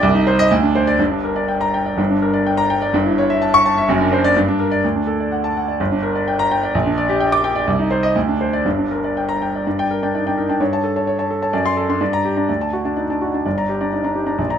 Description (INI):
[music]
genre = classical, virtuoso piano study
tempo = 118-131 BPM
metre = 2/4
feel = rubato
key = G minor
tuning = A4 = 439 Hz
[part]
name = clear concert grand piano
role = solo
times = 0.0-14.6 s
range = F#1 to D6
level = -16 LUFS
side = equal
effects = none
[sound]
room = light reverb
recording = close, detailed microphones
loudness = -16 LUFS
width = side -8 dB against mid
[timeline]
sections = 0.0-2.0 A section; 2.0-9.7 B section; 9.7-14.6 B section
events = none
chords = 0.0 Cm; 0.5 Csus2/D; 1.0 Gm; 2.9 A7/G; 3.9 D7/F#; 4.4 Gm; 4.8 D; 5.8 Gm; 6.7 Gm/Bb; 7.7 Cm; 8.2 Csus2/D; 8.6 Gm; 10.6 A7/G; 11.5 D7/F#; 12.0 Gm; 12.5 D; 13.4 Gm